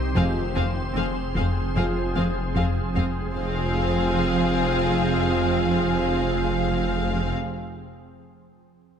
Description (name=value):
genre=cinematic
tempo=75 BPM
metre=4/4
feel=straight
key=F minor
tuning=A4 = 441 Hz
part: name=organ-like drone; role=sustained chords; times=0.0-7.3 s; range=Eb3 to C5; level=-30 LUFS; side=equal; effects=ensemble chorus, built-in reverb
part: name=dark detuned saw bass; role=bass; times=0.0-7.3 s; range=F1 to C2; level=-30 LUFS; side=left 1 dB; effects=none
part: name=rich symphonic violin section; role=melody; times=0.2-7.3 s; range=F5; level=-32 LUFS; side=left 5 dB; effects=none
part: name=rich studio violin section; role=second line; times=0.2-7.3 s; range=Ab4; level=-32 LUFS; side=left 4 dB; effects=none
part: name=clear symphonic viola section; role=accompaniment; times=0.2-7.3 s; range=C4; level=-32 LUFS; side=right 2 dB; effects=none
part: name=clear trombone section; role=sustained chords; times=0.2-7.3 s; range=F3 to Ab3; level=-35 LUFS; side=right 5 dB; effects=none
part: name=mellow French horn section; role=sustained chords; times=0.2-7.3 s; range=C4 to F4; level=-30 LUFS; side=left 1 dB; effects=none
part: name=warbly dusty pluck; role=arpeggios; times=0.2-3.2 s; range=F3 to F4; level=-36 LUFS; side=right 1 dB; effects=none
part: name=rubbery square bass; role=riff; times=0.2-3.2 s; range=F2 to F3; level=-29 LUFS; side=left 3 dB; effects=none
part: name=rich studio double bass section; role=bass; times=0.2-7.3 s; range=F1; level=-29 LUFS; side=right 5 dB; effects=none
part: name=rich symphonic cello section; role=bass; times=0.2-7.3 s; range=F2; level=-31 LUFS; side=right 2 dB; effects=none
room=moderate scoring stage reverb, RT60 1.9 s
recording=none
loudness=-21 LUFS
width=side -8 dB against mid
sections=0.0-3.4 A section; 3.4-6.6 B section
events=none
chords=0.2 Fm